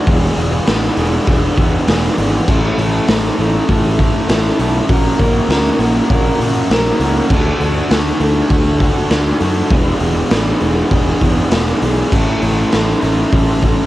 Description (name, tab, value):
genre	indie rock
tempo	100 BPM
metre	4/4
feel	straight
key	unclear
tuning	A4 = 439 Hz
part	crunchy overdriven guitar	riff	0.0-13.9 s	E2 to A#4	-16 LUFS	equal	none
part	fuzz fingered electric bass	bass	0.1-13.7 s	E1 to A#2	-19 LUFS	equal	overdrive
part	raw garage drum kit	drums	0.1-13.8 s	crash cymbal, hi-hat, kick drum, snare drum	-16 LUFS	equal	cassette tape
room	little or no reverb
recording	home recording on cassette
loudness	-12 LUFS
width	side -15 dB against mid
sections	0.0-13.9 A section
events	none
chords	0.1 E7; 2.5 A; 4.9 F#/A#; 7.3 D; 9.7 E7; 12.1 A